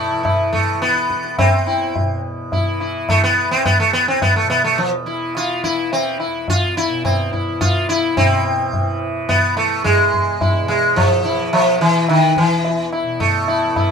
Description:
indian classical, Hindustani; 106 BPM; 3/4; straight; A4 = 440 Hz
sitar; melody; 0.0-13.9 s; D#3 to F4; -16 LUFS; equal
tanpura; drone; 0.0-13.9 s; E2 to E3; -27 LUFS; right 1 dB
tabla; percussion; 0.2-13.9 s; -20 LUFS; equal
moderate studio reverb, RT60 0.6 s; minimal, uncompressed stereo recording; -15 LUFS; side -6 dB against mid
0.0-8.2 A section; 8.2-13.9 B section

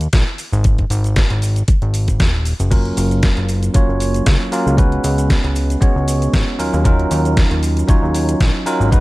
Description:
nu-disco, nu disco; 116 BPM; 4/4; swing 54% on 16ths; A4 = 440 Hz
fat analog bass; bass; 0.0-9.0 s; D#1 to D#2; -17 LUFS; equal; tube saturation
pop drum kit; drums; 0.0-9.0 s; crash cymbal, hi-hat, snare drum; -24 LUFS; equal; overdrive
maracas; percussion; 0.0-9.0 s; -33 LUFS; right 2 dB; analog delay
electronic kick drum; drums; 0.1-9.0 s; -14 LUFS; equal; overdrive
bell-like tine electric piano; accompaniment; 2.7-9.0 s; F#3 to C#5; -19 LUFS; right 1 dB; sidechain pumping, analog delay
digital ambience; echo-heavy mix; -13 LUFS; side -20 dB against mid
0.0-9.0 A section
0.0 N.C.; 0.6 G#5; 2.7 F#maj7; 4.8 C#7sus4; 6.6 D#m9

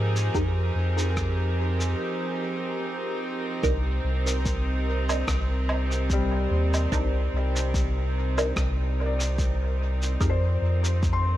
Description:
ambient dub; 73 BPM; 4/4; swing 55% on 16ths; C minor; A4 = 440 Hz
rich chamber string section; sustained chords; 0.0-11.4 s; C3 to Bb4; -31 LUFS; right 2 dB
soft dub sub bass; bass; 0.0-11.4 s; C2 to Ab2; -25 LUFS; equal
wind-like tuned noise texture; texture; 0.0-2.0 s; Bb4; -41 LUFS; right 4 dB
electronic cabasa, rim click and woodblock; drums; 0.2-11.2 s; -34 LUFS; right 1 dB; small room ambience, dub echo
filtered dub chord stab; stabs; 0.3-10.4 s; D4 to Bb4; -35 LUFS; right 1 dB; phaser, wide subtle chorus, dub echo
electronic kick drum; drums; 0.3-11.2 s; -29 LUFS; equal; small room ambience
felt-muted upright piano; arpeggios; 6.1-11.4 s; G3 to C6; -33 LUFS; left 4 dB; tape echo
light reverb, digital ambience; -23 LUFS; side -13 dB against mid
0.0-3.6 A section; 3.6-11.4 B section
break 2.0-3.6
0.0 Fm11; 3.6 Cm7; 10.2 Fm11

